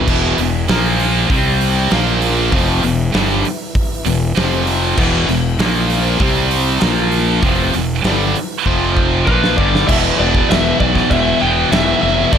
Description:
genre	hard rock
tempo	98 BPM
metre	4/4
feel	straight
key	E phrygian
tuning	A4 = 441 Hz
part	tonewheel organ	sustained chords	0.0-12.4 s	E3 to G5	-29 LUFS	right 1 dB	none
part	cranked stack guitar	riff	0.0-12.4 s	E2 to C4	-22 LUFS	equal	overdrive, phaser
part	distorted electric guitar	riff	0.0-12.4 s	E2 to C4	-20 LUFS	left 10 dB	overdrive
part	scooped high-gain guitar	riff	0.0-12.4 s	E2 to C4	-19 LUFS	right 12 dB	distortion
part	fuzz fingered electric bass	bass	0.1-12.4 s	E1 to C2	-19 LUFS	equal	overdrive
part	big rock drum kit	drums	0.1-12.4 s	crash cymbal, hi-hat, kick drum, snare drum	-19 LUFS	equal	none
part	lead guitar through a small cranked amp	melody	9.3-12.4 s	B4 to G5	-18 LUFS	left 3 dB	overdrive, slapback echo
room	light reverb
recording	none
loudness	-12 LUFS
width	side -8 dB against mid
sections	0.1-9.9 A section; 9.9-12.4 B section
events	drum fill 8.7-9.9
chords	0.1 E5; 0.7 A#5; 1.3 C5; 1.9 A#5; 2.5 Em; 4.4 F5; 5.0 E5; 5.6 A#5; 6.2 C5; 6.8 A#5; 7.4 Em; 8.7 F5; 9.3 Em; 9.9 E5

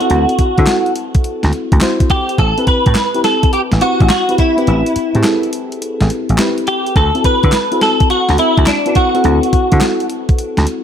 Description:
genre	R&B, new jack swing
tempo	105 BPM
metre	4/4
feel	swing 67% on 16ths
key	unclear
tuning	A4 = 437 Hz
part	direct-recorded clean electric guitar	melody	0.0-10.1 s	D4 to B4	-15 LUFS	equal	ensemble chorus, digital delay
part	mellow FM electric piano	accompaniment	0.0-10.8 s	C4 to C5	-18 LUFS	left 2 dB	chorus
part	clean 12-bit digital drum machine	drums	0.0-10.8 s	handclaps, hi-hat, kick drum, snare drum	-15 LUFS	equal	none
part	vintage slap bass	bass	0.1-10.6 s	A1 to D3	-14 LUFS	equal	none
room	light reverb, digital ambience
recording	none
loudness	-11 LUFS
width	side -9 dB against mid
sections	0.0-10.8 A section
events	break 4.7-7.0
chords	0.0 D7; 2.4 Am7; 7.0 D7

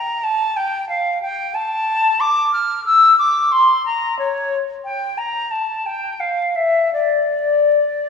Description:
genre	classical, baroque-style fantasia for unaccompanied flute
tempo	80-92 BPM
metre	4/4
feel	rubato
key	D minor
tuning	A4 = 440 Hz
part	silver concert flute	solo	0.0-8.1 s	C#5 to F6	-15 LUFS	left 2 dB	none
room	wet concert hall reverb, RT60 2.0 s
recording	recorded in a church or concert hall, vinyl crackle, small room ambience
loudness	-15 LUFS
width	side -6 dB against mid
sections	0.0-8.1 A section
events	none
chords	none

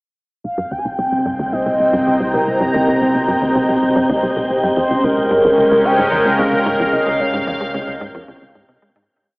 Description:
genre	ambient, sequencer-driven space music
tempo	111 BPM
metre	4/4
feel	straight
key	Db lydian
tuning	A4 = 440 Hz
part	mellow horn-like synth lead	melody	0.4-8.0 s	Bb4 to Ab5	-18 LUFS	equal	phaser, analog chorus, tape echo
part	sweeping resonant pad	sustained chords	0.4-9.1 s	Ab3 to Bb5	-17 LUFS	equal	chorus
part	tight sequencer bass	riff	0.4-9.1 s	C2 to Ab3	-24 LUFS	equal	wide subtle chorus, tape echo
part	analog drone	bass	1.2-9.1 s	C2 to Db2	-28 LUFS	equal	chorus
part	wind-like tuned noise texture	texture	1.1-9.1 s	G4 to G5	-24 LUFS	equal	built-in reverb
room	wet huge ambient reverb, RT60 8.2 s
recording	in a vast, echoing space, cassette tape, AM radio sound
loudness	-14 LUFS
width	side -34 dB against mid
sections	0.4-9.1 A section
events	filter sweep on analog synth bass 0.4-9.1; fade-out 6.2-9.1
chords	0.4 Cm7; 4.8 Db6

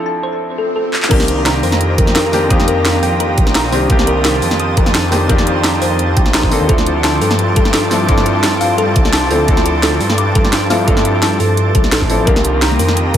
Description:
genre	liquid drum and bass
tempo	172 BPM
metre	4/4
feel	straight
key	C dorian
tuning	A4 = 439 Hz
part	clear grand piano	accompaniment	0.0-13.2 s	Eb3 to A4	-18 LUFS	left 1 dB	dub echo
part	thumb-piano-like synth pluck	arpeggios	0.1-13.2 s	A4 to Eb6	-20 LUFS	left 1 dB	chorus, dub echo
part	swell	sound effects	0.5-1.1 s	none	-25 LUFS	right 1 dB	none
part	drum and bass drum kit	drums	0.9-13.2 s	crash cymbal, handclaps, hi-hat, shaker, snare drum	-17 LUFS	right 1 dB	overdrive
part	lush unison pad	sustained chords	1.1-13.2 s	F3 to Eb6	-21 LUFS	right 1 dB	chorus
part	swelling detuned saw bass	bass	1.1-13.2 s	A1 to G2	-17 LUFS	equal	tube saturation
part	electronic kick drum	drums	1.1-13.2 s	none	-14 LUFS	equal	overdrive
part	congas	percussion	12.7-13.2 s	none	-24 LUFS	left 8 dB	none
room	moderate spring reverb, RT60 1.2 s, digital ambience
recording	echo-heavy mix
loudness	-11 LUFS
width	side -10 dB against mid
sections	0.0-1.1 A section; 1.1-13.2 B section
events	break 0.0-1.1; build-up 0.0-1.1; swell 0.5-1.1; drum fill 0.9; drop 1.1-13.2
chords	0.0 Dm7; 1.1 Cm7; 6.7 Dm7; 12.3 Cm7

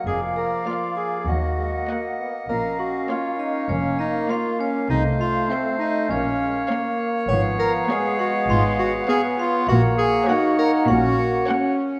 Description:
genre	cinematic, playful, whimsical film cue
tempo	100 BPM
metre	4/4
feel	straight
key	F# major from 7.3 s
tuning	A4 = 439 Hz
part	vibraphone with medium hard mallets	melody	0.0-11.7 s	C5 to C#6	-32 LUFS	equal	none
part	hollow small flute group	second line	0.0-12.0 s	F5 to F#5	-34 LUFS	equal	none
part	warm oboe	second line	0.0-11.8 s	C5 to Eb5	-34 LUFS	equal	none
part	clear bassoon	accompaniment	0.0-11.8 s	A3 to B3	-30 LUFS	equal	none
part	mellow French horn section	sustained chords	0.0-12.0 s	E#3 to D#4	-30 LUFS	equal	none
part	clear clarinet	second line	0.1-11.8 s	C4 to C#5	-28 LUFS	equal	none
part	warm chamber cello section	bass	0.1-11.3 s	Eb2 to C3	-29 LUFS	equal	none
part	warm studio double bass section	bass	0.1-11.4 s	F1 to Eb2	-29 LUFS	equal	none
part	warm symphonic violin section	melody	0.7-11.9 s	F5 to Gb5	-36 LUFS	equal	none
part	warm chamber violin section	second line	0.7-11.9 s	C5 to Eb5	-39 LUFS	equal	none
part	rich chamber viola section	accompaniment	0.7-11.9 s	A3 to B3	-33 LUFS	equal	none
room	wet scoring stage reverb, RT60 1.6 s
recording	none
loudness	-22 LUFS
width	mono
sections	0.0-12.0 A section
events	none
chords	0.1 Bb/F; 1.3 Ebm; 2.5 Bbm; 4.9 F/C; 6.1 Bbm; 7.3 C#7/G#; 9.7 F#/A#

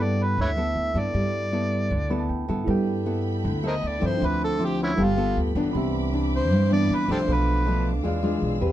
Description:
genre	bossa nova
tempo	157 BPM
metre	4/4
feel	straight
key	G major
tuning	A4 = 440 Hz
part	overdriven harmonica	melody	0.0-7.9 s	B3 to E5	-27 LUFS	equal	none
part	mellow tine electric piano	accompaniment	0.0-8.7 s	C4 to B5	-31 LUFS	right 5 dB	none
part	nylon-string guitar	accompaniment	0.0-8.7 s	G2 to B4	-27 LUFS	left 2 dB	none
part	upright bass	bass	0.0-8.7 s	G1 to G2	-26 LUFS	equal	none
part	dark symphonic string section	sustained chords	2.7-8.7 s	A4 to E6	-38 LUFS	left 1 dB	none
room	light reverb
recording	dark, warm production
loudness	-22 LUFS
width	side -13 dB against mid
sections	0.0-2.7 A section; 2.7-8.7 B section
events	tine electric piano fill 1.9-2.7; harmonica solo 2.7-8.7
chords	0.0 G69; 4.2 Dm9; 5.0 G9; 5.7 Cmaj9; 7.3 Bm7b5; 8.0 E7b9

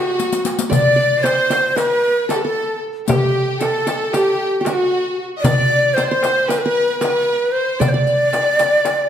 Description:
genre	Turkish makam ensemble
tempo	228 BPM (eighths)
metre	9/8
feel	straight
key	D makam hicaz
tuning	A4 = 440 Hz
part	breathy ney	melody	0.0-9.1 s	F#4 to D5	-17 LUFS	equal	none
part	bright symphonic violin section	second line	0.0-9.1 s	F#4 to Eb5	-23 LUFS	left 1 dB	slapback echo
part	qanun	second line	0.0-9.1 s	F#4 to D5	-24 LUFS	right 3 dB	none
part	darbuka	percussion	0.2-9.0 s	none	-24 LUFS	right 2 dB	none
part	riq	percussion	0.2-9.0 s	none	-27 LUFS	left 6 dB	none
part	frame drum	percussion	0.7-9.0 s	none	-25 LUFS	left 3 dB	none
room	wet recital hall reverb, RT60 1.6 s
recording	none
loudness	-15 LUFS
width	side -9 dB against mid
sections	0.0-9.1 A section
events	drum fill 0.2-0.7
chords	none

